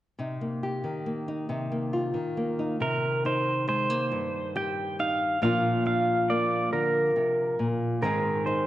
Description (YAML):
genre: acoustic folk duo or small band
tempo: 46 BPM (dotted quarters)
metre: 6/8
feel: straight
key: C minor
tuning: A4 = 440 Hz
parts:
  - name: nylon-string guitar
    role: accompaniment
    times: 0.2-8.7 s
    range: G2 to Ab4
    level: -28 LUFS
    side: left 1 dB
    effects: none
  - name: pedal steel guitar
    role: second line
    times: 2.8-8.7 s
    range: Bb4 to G5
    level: -26 LUFS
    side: right 1 dB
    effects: none
room: wet concert hall reverb, RT60 1.9 s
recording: worn, warbling old tape, cassette tape, warbly pitch drift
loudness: -25 LUFS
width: side -14 dB against mid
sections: 0.2-2.8 A section; 2.8-8.7 B section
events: pedal steel guitar solo 2.8-8.7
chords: 0.2 Cm7; 5.4 Bb; 8.0 Abadd9